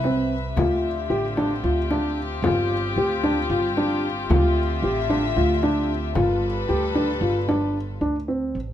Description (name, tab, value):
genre	contemporary instrumental, chamber music in an uneven meter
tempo	226 BPM (eighths)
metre	7/8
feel	straight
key	D dorian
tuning	A4 = 440 Hz
part	dark studio string section	sustained chords	0.0-8.0 s	C3 to E5	-27 LUFS	left 5 dB	none
part	dark baby grand piano	arpeggios	0.0-8.6 s	C4 to G4	-23 LUFS	equal	none
part	upright bass	bass	0.0-8.7 s	G1 to D2	-26 LUFS	right 2 dB	none
part	frame drum	percussion	0.0-7.7 s	none	-28 LUFS	left 4 dB	none
room	light reverb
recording	close, detailed microphones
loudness	-20 LUFS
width	side -11 dB against mid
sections	0.0-8.0 A section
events	none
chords	0.0 Cmaj7; 0.6 Dm11; 2.4 G7sus4; 4.3 Dm11; 6.2 G9; 8.0 D5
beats	0.04 0.31 | 0.57 0.84 1.11 1.37 1.64 1.90 2.17 | 2.44 2.70 2.97 3.23 3.50 3.76 4.03 | 4.29 4.56 4.83 5.09 5.36 5.62 5.89 | 6.15 6.42 6.68 6.95 7.22 7.48 7.75 | 8.01 8.28 8.55